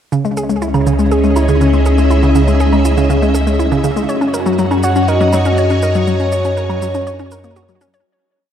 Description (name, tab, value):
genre	ambient, sequencer-driven space music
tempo	121 BPM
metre	4/4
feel	straight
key	C# dorian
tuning	A4 = 441 Hz
part	string machine, full ensemble	sustained chords	0.1-8.1 s	C#4 to A#5	-17 LUFS	left 1 dB	ensemble chorus, shimmer reverb
part	hollow square pluck	riff	0.1-8.0 s	C#3 to C#5	-16 LUFS	equal	chorus, phaser, tape echo
part	warm sub bass	bass	0.1-8.0 s	C#2 to F#2	-16 LUFS	equal	none
part	shaker and woodblock	percussion	0.1-8.0 s	none	-31 LUFS	right 3 dB	tape echo
part	soft octave-layered synth lead	melody	4.8-7.5 s	C#5 to F#5	-18 LUFS	equal	chorus, tape echo
room	moderate huge ambient reverb, RT60 7.9 s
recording	dark, warm production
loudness	-11 LUFS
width	side -9 dB against mid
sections	0.1-8.1 A section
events	fade-out 5.4-8.1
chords	0.1 C#madd9; 4.1 F#6